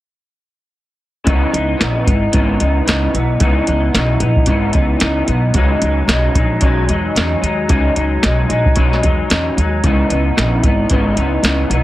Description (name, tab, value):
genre	indie pop, bedroom pop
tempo	112 BPM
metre	4/4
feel	swing 55% on 16ths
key	C# dorian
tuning	A4 = 438 Hz
part	electric guitar through a small old amp	accompaniment	1.2-11.8 s	C#3 to D#4	-17 LUFS	left 1 dB	analog chorus, vibrato effect
part	upright bass	bass	1.3-11.8 s	G#1 to E2	-16 LUFS	equal	none
part	soft vintage rhythm box	drums	1.3-11.8 s	hi-hat, kick drum, snare drum	-16 LUFS	equal	none
room	little or no reverb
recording	heavily compressed radio sound, multiband compression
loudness	-12 LUFS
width	side -15 dB against mid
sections	1.3-11.8 A section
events	none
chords	1.3 C#m9; 5.5 Emaj9; 9.8 C#m9